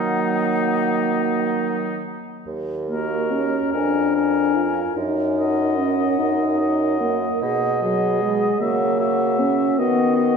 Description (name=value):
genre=classical, slow romantic movement for wind quintet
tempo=49 BPM (dotted quarters)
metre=6/8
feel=uneven beats, rubato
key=Eb minor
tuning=A4 = 440 Hz
part: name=mellow hollow concert flute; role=melody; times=0.0-10.4 s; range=Eb5 to Ab5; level=-28 LUFS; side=left 5 dB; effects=none
part: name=warm oboe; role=second line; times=0.0-10.4 s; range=Eb4 to Fb5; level=-28 LUFS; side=left 4 dB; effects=none
part: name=mellow French horn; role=accompaniment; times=0.0-10.4 s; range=Gb3 to F4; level=-22 LUFS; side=left 1 dB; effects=none
part: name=mellow clarinet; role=accompaniment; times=0.0-10.4 s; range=Bb3 to Bb4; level=-26 LUFS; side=right 6 dB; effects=none
part: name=clear bassoon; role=bass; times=0.0-10.4 s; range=Eb2 to Eb3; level=-25 LUFS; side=right 2 dB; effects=none
room=wet concert hall reverb, RT60 2.4 s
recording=heard from further back in the room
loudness=-18 LUFS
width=side -6 dB against mid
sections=0.0-2.5 A section; 2.5-10.4 B section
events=none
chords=0.0 Ebm; 3.7 Bb7/F; 5.0 Ebm/Gb; 7.4 B6; 8.6 Gb7/Db; 9.8 B/D#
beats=1.09 | 2.46 3.74 | 4.97 6.18 | 7.42 8.61 | 9.79